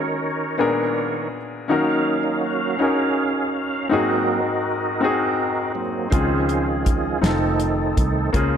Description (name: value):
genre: slow gospel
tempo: 54 BPM (dotted quarters)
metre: 6/8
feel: straight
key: unclear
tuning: A4 = 440 Hz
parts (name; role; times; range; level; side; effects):
- bright concert grand piano; accompaniment; 0.0-8.6 s; Ab2 to Bb4; -22 LUFS; left 3 dB; none
- tonewheel organ; sustained chords; 0.0-8.6 s; Db3 to F5; -23 LUFS; right 4 dB; fast rotary speaker, chorus vibrato
- fingered electric bass; bass; 6.1-8.6 s; F1 to Db2; -24 LUFS; equal; none
- warm soul drum kit; drums; 6.1-8.5 s; hi-hat, kick drum, snare drum; -22 LUFS; equal; none
room: moderate concert hall reverb, RT60 2.0 s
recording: none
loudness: -19 LUFS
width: side -8 dB against mid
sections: 0.0-8.6 A section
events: tonewheel organ solo 0.0-8.6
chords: 0.0 Gb6; 0.6 Bb7b9; 1.7 Ebm7; 3.9 Ab7; 6.1 Dbmaj7; 7.2 F7